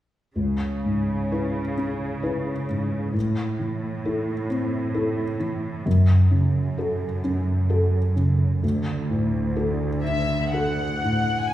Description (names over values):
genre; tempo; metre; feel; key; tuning
cinematic, emotional film score for orchestra; 60-68 BPM; 3/4; rubato; C# phrygian; A4 = 441 Hz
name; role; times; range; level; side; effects
felt-muted upright piano; accompaniment; 0.4-11.5 s; C#2 to B4; -24 LUFS; equal; none
rich symphonic cello section; bass; 0.4-11.3 s; D2 to C#3; -26 LUFS; right 1 dB; none
warm studio violin section; melody; 10.0-11.5 s; E5 to F#5; -25 LUFS; left 3 dB; none
room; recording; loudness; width
wet recital hall reverb, RT60 1.3 s; heard from further back in the room; -21 LUFS; side -13 dB against mid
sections
0.4-11.5 A section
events
none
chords
0.4 C#m7; 3.1 Am; 5.9 F#m; 8.6 D